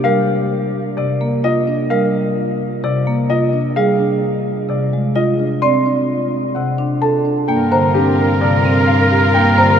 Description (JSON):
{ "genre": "classical, minimalist pattern music", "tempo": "129 BPM", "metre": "4/4", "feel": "straight", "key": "C minor", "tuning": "A4 = 440 Hz", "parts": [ { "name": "warm grand piano", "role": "melody", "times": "0.0-9.6 s", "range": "G4 to C6", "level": "-22 LUFS", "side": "left 6 dB", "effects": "none" }, { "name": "marimba with medium hard mallets", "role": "accompaniment", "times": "0.0-9.8 s", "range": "C3 to D4", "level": "-18 LUFS", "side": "equal", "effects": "none" }, { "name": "marimba with soft mallets", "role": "arpeggios", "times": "0.0-9.8 s", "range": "D4 to D5", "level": "-19 LUFS", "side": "right 3 dB", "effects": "none" }, { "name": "warm oboe", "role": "second line", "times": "7.5-9.8 s", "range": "Bb4", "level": "-18 LUFS", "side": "right 2 dB", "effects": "none" }, { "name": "rich studio violin section", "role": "sustained chords", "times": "7.5-9.8 s", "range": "F4 to Bb4", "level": "-21 LUFS", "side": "left 2 dB", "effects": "none" }, { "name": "rich double bass", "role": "bass", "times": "7.5-9.8 s", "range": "G2", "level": "-18 LUFS", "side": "equal", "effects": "none" }, { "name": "small celesta", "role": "arpeggios", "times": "7.7-9.8 s", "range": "Bb5", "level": "-20 LUFS", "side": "left 4 dB", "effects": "none" } ], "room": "wet huge ambient reverb, RT60 8.6 s", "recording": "in a vast, echoing space", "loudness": "-14 LUFS", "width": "side -8 dB against mid", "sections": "0.0-7.5 A section; 7.5-9.8 B section", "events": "none", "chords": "0.0 C9sus4; 3.8 Fmadd9; 5.6 D7(no3); 7.5 Gm7", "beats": "| 0.05 0.51 0.98 1.44 | 1.91 2.37 2.84 3.30 | 3.77 4.23 4.70 5.16 | 5.63 6.09 6.56 7.02 | 7.49 7.95 8.42 8.88 | 9.35" }